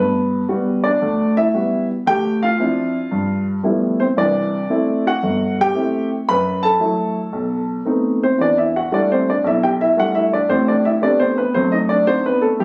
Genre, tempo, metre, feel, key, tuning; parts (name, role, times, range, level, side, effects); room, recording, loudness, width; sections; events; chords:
solo jazz; 114 BPM; 4/4; swing 67% on 8ths; G major; A4 = 440 Hz
warm baby grand piano; solo; 0.0-12.6 s; G1 to B5; -18 LUFS; equal
moderate studio ambience, RT60 0.5 s; recorded on a phone in the room, club reverb; -18 LUFS; mono
0.0-12.6 A section
0.0 Gmaj7; 2.1 Dm9; 3.1 G13; 4.2 C6; 6.3 F#madd11; 7.3 B7b9; 8.4 Em11; 10.5 Am9; 11.5 D7b9